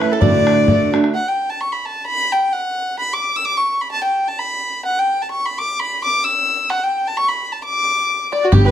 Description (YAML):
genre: celtic folk, Celtic polka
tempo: 130 BPM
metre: 2/4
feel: swing 55% on 8ths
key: D major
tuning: A4 = 441 Hz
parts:
  - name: dark fiddle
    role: melody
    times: 0.0-8.7 s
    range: F#4 to E6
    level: -17 LUFS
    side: left 1 dB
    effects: none
  - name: accordion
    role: second line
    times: 0.0-0.9, 8.3-8.7 s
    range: F#4 to D5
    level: -25 LUFS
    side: left 6 dB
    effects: none
  - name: bluegrass banjo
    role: second line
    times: 0.0-0.9, 8.3-8.7 s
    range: G4 to D5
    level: -25 LUFS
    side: right 8 dB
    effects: slapback echo
  - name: picked steel-string acoustic guitar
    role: accompaniment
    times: 0.0-1.2, 8.5-8.7 s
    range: D2 to G4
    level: -16 LUFS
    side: right 4 dB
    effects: none
  - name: bodhran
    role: percussion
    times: 0.0-1.1, 8.5-8.7 s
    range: none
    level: -18 LUFS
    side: left 2 dB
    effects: none
  - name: upright bass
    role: bass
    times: 8.5-8.7 s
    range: G1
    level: -11 LUFS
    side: equal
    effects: none
room: moderate studio reverb, RT60 0.7 s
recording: none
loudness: -16 LUFS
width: side -10 dB against mid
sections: 0.0-1.1 A section; 1.1-8.5 A section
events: none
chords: 0.2 D; 1.1 N.C.